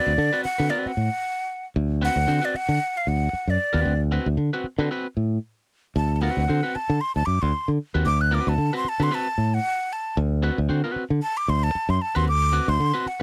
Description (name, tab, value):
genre	funk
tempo	114 BPM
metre	4/4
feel	swing 56% on 16ths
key	D mixolydian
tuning	A4 = 440 Hz
part	breathy jazz flute	melody	0.0-13.2 s	D5 to F#6	-27 LUFS	equal	none
part	electric guitar at the edge of break-up	accompaniment	0.0-13.2 s	C4 to C5	-31 LUFS	equal	none
part	fingered electric bass	bass	0.1-13.1 s	D2 to D3	-25 LUFS	equal	none
room	little or no reverb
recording	dry, close 1970s-style studio recording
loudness	-24 LUFS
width	mono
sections	0.0-13.2 A section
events	flute solo 0.0-13.2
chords	0.0 D6